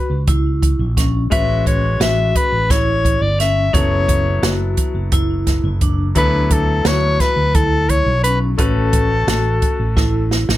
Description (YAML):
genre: progressive instrumental, band music in an uneven meter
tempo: 173 BPM (eighths)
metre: 7/8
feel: straight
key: A major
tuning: A4 = 440 Hz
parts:
  - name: breathy soprano saxophone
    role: melody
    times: 0.0-10.3 s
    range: A4 to E5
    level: -19 LUFS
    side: left 2 dB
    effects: none
  - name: vibraphone with hard mallets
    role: arpeggios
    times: 0.0-10.5 s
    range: C#4 to F#4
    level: -24 LUFS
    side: left 1 dB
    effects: ping-pong delay
  - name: fretless electric bass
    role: bass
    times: 0.1-10.6 s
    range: F#1 to D2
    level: -18 LUFS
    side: equal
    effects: none
  - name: open jazz drum kit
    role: drums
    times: 0.3-10.6 s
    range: hi-hat, kick drum, snare drum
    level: -19 LUFS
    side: right 1 dB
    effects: none
  - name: bright grand piano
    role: accompaniment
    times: 1.3-10.6 s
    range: F#3 to B4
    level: -27 LUFS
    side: left 4 dB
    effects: none
room: light reverb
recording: none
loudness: -14 LUFS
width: side -14 dB against mid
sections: 0.0-10.6 A section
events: drum fill 10.0-10.6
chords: 0.0 C#m; 1.3 A; 3.7 F#m; 6.2 Dadd9; 8.6 A